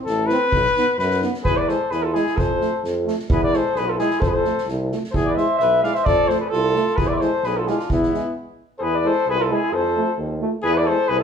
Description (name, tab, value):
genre	balkan folk, Balkan brass band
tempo	130 BPM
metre	2/4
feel	straight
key	E phrygian dominant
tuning	A4 = 440 Hz
part	dark trumpet	second line	0.0-11.2 s	B3 to D5	-24 LUFS	left 2 dB	none
part	warm tuba	bass	0.1-11.2 s	A1 to F#2	-25 LUFS	right 1 dB	none
part	soft-mallet drum kit	percussion	0.1-8.2 s	kick drum, snare drum	-25 LUFS	equal	none
part	dark euphonium	accompaniment	0.3-11.0 s	D#4 to F4	-29 LUFS	left 2 dB	none
part	growling trombone	accompaniment	0.3-11.0 s	G#3 to C4	-29 LUFS	right 4 dB	none
part	warm flugelhorn	melody	1.4-11.2 s	E4 to F5	-21 LUFS	left 2 dB	none
room	wet stone room reverb, RT60 1.0 s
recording	band playing live in one room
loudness	-18 LUFS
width	side -7 dB against mid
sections	0.0-1.4 A section; 1.4-8.8 B section; 8.8-11.2 B section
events	trumpet solo 0.0-1.4; stop 8.4-8.8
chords	0.0 Am; 0.5 B; 1.4 E; 2.4 F; 3.3 E; 4.2 F; 5.1 E; 6.1 F; 7.0 E; 9.7 F; 10.6 E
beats	0.06 | 0.52 0.98 | 1.45 1.91 | 2.37 2.84 | 3.30 3.76 | 4.22 4.68 | 5.14 5.61 | 6.07 6.53 | 6.99 7.44 | 7.90 8.36 | 8.82 9.28 | 9.73 10.19 | 10.64 11.10